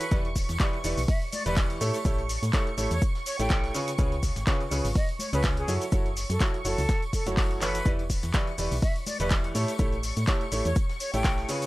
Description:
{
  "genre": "piano house",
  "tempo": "124 BPM",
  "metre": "4/4",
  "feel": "swing 55% on 16ths",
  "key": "unclear",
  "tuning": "A4 = 440 Hz",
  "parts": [
    { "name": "bright silver concert flute", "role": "melody", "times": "0.0-11.5 s", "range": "G#4 to G5", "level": "-36 LUFS", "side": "equal", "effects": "tape echo" },
    { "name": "analog string pad", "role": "sustained chords", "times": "0.0-11.7 s", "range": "C#6", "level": "-38 LUFS", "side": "right 2 dB", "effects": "ensemble chorus, sidechain pumping" },
    { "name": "breakbeat sampler-style drum kit", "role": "drums", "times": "0.0-11.7 s", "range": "hi-hat, shaker, snare drum", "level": "-44 LUFS", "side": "right 1 dB", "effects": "high-pass filter on perc, high-pass filter on snare, high-pass filter on hats" },
    { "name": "punchy analog drum machine", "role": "drums", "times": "0.0-11.7 s", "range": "handclaps, hi-hat, shaker", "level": "-33 LUFS", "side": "left 1 dB", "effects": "none" },
    { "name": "tambourine and congas", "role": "percussion", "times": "0.0-11.7 s", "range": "none", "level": "-45 LUFS", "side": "left 4 dB", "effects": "none" },
    { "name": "clear baby grand piano", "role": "riff", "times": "0.1-11.6 s", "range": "C#3 to D5", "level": "-32 LUFS", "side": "right 1 dB", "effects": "sidechain pumping, tape echo" },
    { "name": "solid FM bass", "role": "bass", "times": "0.1-11.4 s", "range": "E1 to A2", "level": "-30 LUFS", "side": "equal", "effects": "sidechain pumping" },
    { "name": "electronic kick drum", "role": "drums", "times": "0.1-11.4 s", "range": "none", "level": "-26 LUFS", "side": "equal", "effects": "none" }
  ],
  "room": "little or no reverb",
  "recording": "dry, gritty hardware recording",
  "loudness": "-24 LUFS",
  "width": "side -18 dB against mid",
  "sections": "0.0-11.7 A section",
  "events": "drum fill 7.6",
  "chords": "0.1 Em7; 1.8 A7; 3.7 C#7; 5.7 F#m7; 7.9 Em7; 9.6 A7"
}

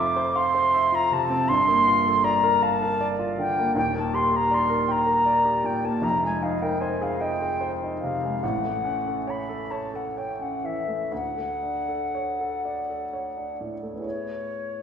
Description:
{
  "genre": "classical, impressionist duo for flute and grand piano",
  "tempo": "39-54 BPM (dotted quarters)",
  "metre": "6/8",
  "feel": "rubato",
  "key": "unclear",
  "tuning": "A4 = 440 Hz",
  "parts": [
    { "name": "mellow concert flute", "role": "melody", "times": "0.0-14.8 s", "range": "C#5 to D6", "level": "-24 LUFS", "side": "left 1 dB", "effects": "none" },
    { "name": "clear grand piano", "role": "accompaniment", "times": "0.0-14.8 s", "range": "D#1 to G5", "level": "-27 LUFS", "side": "right 1 dB", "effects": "none" }
  ],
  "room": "wet recital hall reverb, RT60 1.3 s",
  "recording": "heard from further back in the room",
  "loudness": "-22 LUFS",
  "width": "side -8 dB against mid",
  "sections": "0.0-14.0 A section",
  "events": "none",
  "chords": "0.0 Fmaj7; 1.5 Gm11; 3.8 D#maj7; 6.0 Fm11; 8.4 A6; 11.1 Dmaj7; 14.0 Amaj9"
}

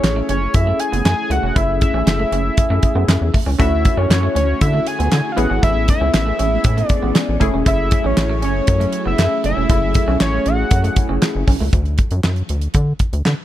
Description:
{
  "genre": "early-eighties boogie funk",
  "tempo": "118 BPM",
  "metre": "4/4",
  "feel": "straight",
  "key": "F# minor",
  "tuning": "A4 = 440 Hz",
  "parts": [
    { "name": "fat analog lead", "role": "melody", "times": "0.0-11.0 s", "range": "C#5 to G#5", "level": "-21 LUFS", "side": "equal", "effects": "chorus" },
    { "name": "funky polysynth comp", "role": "accompaniment", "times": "0.0-11.4 s", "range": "A3 to G#4", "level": "-23 LUFS", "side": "left 2 dB", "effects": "chorus" },
    { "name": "clean electric guitar", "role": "riff", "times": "0.0-11.7 s", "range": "A3 to E4", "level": "-27 LUFS", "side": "right 6 dB", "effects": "lush chorus" },
    { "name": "rubbery square bass", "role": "bass", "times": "0.0-13.3 s", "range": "E1 to D3", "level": "-19 LUFS", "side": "equal", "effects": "none" },
    { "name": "damped 70s drum kit", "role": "drums", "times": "0.0-13.4 s", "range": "handclaps, hi-hat, kick drum, snare drum", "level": "-17 LUFS", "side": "equal", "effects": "none" },
    { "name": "phased string machine", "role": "sustained chords", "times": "3.6-11.7 s", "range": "D3 to F#4", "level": "-29 LUFS", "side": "equal", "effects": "ensemble chorus, phaser" }
  ],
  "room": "studio reverb",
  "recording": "none",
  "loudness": "-14 LUFS",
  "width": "side -13 dB against mid",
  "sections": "0.0-11.7 A section; 11.7-13.4 B section",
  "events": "none",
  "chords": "0.0 F#m7; 3.6 Dmaj9; 5.4 Amaj9; 7.4 F#m7; 11.7 D"
}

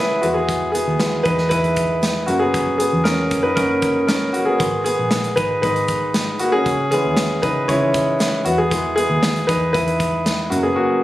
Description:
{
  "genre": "piano-driven pop",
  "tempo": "117 BPM",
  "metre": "4/4",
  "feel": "straight",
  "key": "unclear",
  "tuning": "A4 = 440 Hz",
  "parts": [
    { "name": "warm grand piano", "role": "accompaniment", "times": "0.0-11.0 s", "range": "C#3 to C#5", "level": "-17 LUFS", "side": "equal", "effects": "none" },
    { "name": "vintage muted picked electric bass", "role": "bass", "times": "0.0-10.8 s", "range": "G#1 to F#2", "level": "-26 LUFS", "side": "equal", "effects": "none" },
    { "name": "natural country drum kit", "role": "drums", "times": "0.2-10.6 s", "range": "hi-hat, kick drum, snare drum", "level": "-23 LUFS", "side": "equal", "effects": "none" }
  ],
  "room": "light reverb, small room reverb",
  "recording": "recorded on a phone in the room, studio reverb, compression",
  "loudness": "-16 LUFS",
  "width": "side -15 dB against mid",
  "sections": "0.0-11.0 A section",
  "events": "grand piano solo 0.0-11.0",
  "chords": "0.2 E; 2.3 F#; 4.6 G#m; 6.7 C#m; 8.5 E; 10.5 F#"
}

